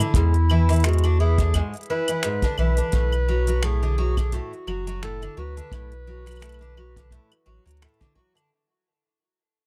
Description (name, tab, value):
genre	folktronica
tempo	86 BPM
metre	4/4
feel	swing 56% on 16ths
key	B dorian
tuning	A4 = 437 Hz
part	mellow clarinet	melody	0.0-7.8 s	E4 to B4	-32 LUFS	equal	tape echo
part	picked twelve-string acoustic guitar	arpeggios	0.0-8.5 s	G#2 to F#3	-31 LUFS	equal	tape echo
part	warm sub bass	bass	0.0-7.9 s	F#1 to E2	-24 LUFS	equal	none
part	organic electronic drum kit	drums	0.0-8.5 s	claves, finger snaps, hi-hat, shaker	-33 LUFS	equal	none
part	kick drum	drums	0.1-8.3 s	none	-25 LUFS	equal	none
room	little or no reverb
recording	dry, close 1970s-style studio recording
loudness	-22 LUFS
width	mono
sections	0.0-8.5 A section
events	fade-out 0.0-8.5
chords	0.0 E7; 2.9 Bm7